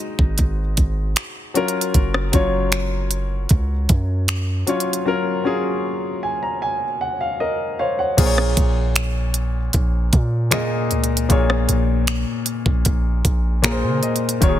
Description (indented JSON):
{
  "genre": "contemporary R&B",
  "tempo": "77 BPM",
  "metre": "4/4",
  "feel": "straight",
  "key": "Bb minor",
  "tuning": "A4 = 440 Hz",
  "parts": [
    { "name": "warm baby grand piano", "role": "accompaniment", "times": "0.0-14.6 s", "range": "Bb2 to Bb5", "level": "-22 LUFS", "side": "left 2 dB", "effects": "none" },
    { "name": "warm 808-style bass", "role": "bass", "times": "0.2-14.6 s", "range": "Eb1 to Db3", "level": "-21 LUFS", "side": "equal", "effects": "none" },
    { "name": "trap drum kit", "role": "drums", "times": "0.2-14.6 s", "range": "crash cymbal, finger snaps, hi-hat, kick drum, rim click", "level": "-19 LUFS", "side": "equal", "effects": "soft clipping on snare" }
  ],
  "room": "digital ambience",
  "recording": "dense, heavily limited modern master",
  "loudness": "-17 LUFS",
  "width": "side -12 dB against mid",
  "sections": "0.0-8.2 A section; 8.2-14.6 B section",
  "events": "break 5.1-8.2; grand piano fill 5.8-8.2, 13.2-14.4",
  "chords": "0.0 Ab7; 1.6 Gbmaj7; 8.2 Bbm7"
}